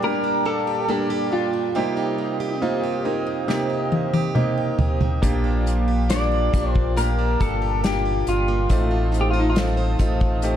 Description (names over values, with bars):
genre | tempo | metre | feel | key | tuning
pop ballad | 69 BPM | 4/4 | straight | Bb major | A4 = 445 Hz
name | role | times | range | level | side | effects
electric guitar at the edge of break-up | melody | 0.0-9.6 s | Eb4 to D5 | -25 LUFS | left 1 dB | wide subtle chorus
clear concert grand piano | accompaniment | 0.0-10.6 s | A2 to Bb4 | -26 LUFS | right 1 dB | none
airy breathy pad | sustained chords | 0.0-10.6 s | Bb3 to Eb6 | -29 LUFS | equal | chorus
picked plugged-in steel-string acoustic guitar | arpeggios | 0.0-10.6 s | Bb2 to C5 | -30 LUFS | right 5 dB | none
unplugged drum kit | drums | 3.5-10.6 s | hi-hat, kick drum, snare drum, toms | -22 LUFS | equal | none
sub bass with octave | bass | 5.2-10.6 s | G1 to Bb1 | -22 LUFS | equal | none
room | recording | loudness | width
light reverb | dark, warm production | -19 LUFS | side -10 dB against mid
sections
0.0-10.6 A section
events
drum fill 3.5-5.2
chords
0.0 Gm/Bb; 1.8 Cm7; 5.2 Bb6; 8.7 F7/A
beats
0.03 0.89 | 1.75 2.62 3.49 4.36 | 5.23 6.10 6.97 7.84 | 8.70 9.56 10.43